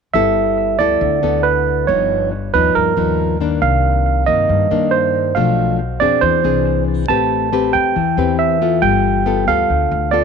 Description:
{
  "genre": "bossa nova",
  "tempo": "138 BPM",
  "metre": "4/4",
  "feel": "straight",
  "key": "G major",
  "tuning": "A4 = 440 Hz",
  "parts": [
    { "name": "barky tine electric piano", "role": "melody", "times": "0.1-10.2 s", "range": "A#4 to A5", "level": "-16 LUFS", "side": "right 10 dB", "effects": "tape echo" },
    { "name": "nylon-string guitar", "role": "accompaniment", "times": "0.1-10.2 s", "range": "G2 to B4", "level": "-18 LUFS", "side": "left 12 dB", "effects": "none" },
    { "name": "upright bass", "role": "bass", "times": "0.1-10.2 s", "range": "G1 to G2", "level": "-22 LUFS", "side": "left 1 dB", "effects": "none" }
  ],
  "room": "light reverb, small room reverb",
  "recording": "1960s-style stereo with parts hard left and right",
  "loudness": "-13 LUFS",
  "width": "side -6 dB against mid",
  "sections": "0.1-10.2 A section",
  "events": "none",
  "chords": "0.1 G69; 1.9 G7alt; 3.6 Cm9; 5.4 Bm7b5; 6.2 Eaug7; 7.1 Am9; 8.8 G9"
}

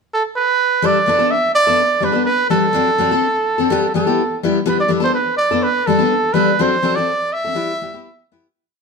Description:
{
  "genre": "highlife",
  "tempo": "124 BPM",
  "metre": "4/4",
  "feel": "straight",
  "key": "G major",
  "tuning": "A4 = 441 Hz",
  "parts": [
    { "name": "warm trumpet", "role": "melody", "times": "0.1-8.3 s", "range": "A4 to E5", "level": "-16 LUFS", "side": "right 3 dB", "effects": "none" },
    { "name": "picked steel-string acoustic guitar", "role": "accompaniment", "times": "0.8-8.5 s", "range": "F#3 to A4", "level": "-18 LUFS", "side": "left 4 dB", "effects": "none" }
  ],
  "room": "moderate stone room reverb, RT60 1.2 s",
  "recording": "band playing live in one room",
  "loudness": "-14 LUFS",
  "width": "side -4 dB against mid",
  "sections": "0.0-0.8 pickup bar; 0.8-8.5 groove",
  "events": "fade-out 6.6-8.5",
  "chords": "0.0 N.C.; 0.8 Gadd9; 2.7 D7; 3.7 G69; 4.7 Gadd9; 6.6 D7; 7.6 G6"
}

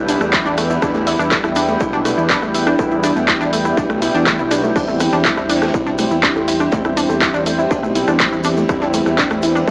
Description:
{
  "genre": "melodic techno",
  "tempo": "122 BPM",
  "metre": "4/4",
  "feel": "straight",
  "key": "unclear",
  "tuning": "A4 = 440 Hz",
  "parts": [
    { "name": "sweeping resonant pad", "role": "sustained chords", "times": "0.0-9.7 s", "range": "E4 to G5", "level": "-25 LUFS", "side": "equal", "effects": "chorus, phaser, sidechain pumping" },
    { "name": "analog pluck", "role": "arpeggios", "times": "0.0-9.7 s", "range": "A3 to E4", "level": "-22 LUFS", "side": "equal", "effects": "chorus, sidechain pumping, tape echo" },
    { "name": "analog synth brass", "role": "stabs", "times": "0.0-9.7 s", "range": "G3 to E4", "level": "-24 LUFS", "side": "equal", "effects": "chorus, cassette tape, sidechain pumping, tape echo" },
    { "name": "swelling detuned saw bass", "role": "bass", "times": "0.0-9.7 s", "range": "B1 to E2", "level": "-26 LUFS", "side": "equal", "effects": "sidechain pumping" },
    { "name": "techno drum kit", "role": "drums", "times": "0.1-9.7 s", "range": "crash cymbal, handclaps, hi-hat, rim click", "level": "-22 LUFS", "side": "equal", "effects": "none" },
    { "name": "vintage brush drum kit", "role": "drums", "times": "0.1-9.7 s", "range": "hi-hat, ride cymbal, snare drum", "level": "-35 LUFS", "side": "equal", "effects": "none" },
    { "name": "egg shaker", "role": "percussion", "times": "0.1-9.7 s", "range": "none", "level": "-39 LUFS", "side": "equal", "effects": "none" },
    { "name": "electronic kick drum", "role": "drums", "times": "0.3-9.7 s", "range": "none", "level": "-26 LUFS", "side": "equal", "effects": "distortion" }
  ],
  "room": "moderate lush hall reverb, RT60 1.8 s, studio reverb",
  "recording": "dry, gritty hardware recording, small speaker sound",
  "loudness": "-16 LUFS",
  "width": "mono",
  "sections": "0.0-9.7 A section",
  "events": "none",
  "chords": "0.0 Em; 4.8 C"
}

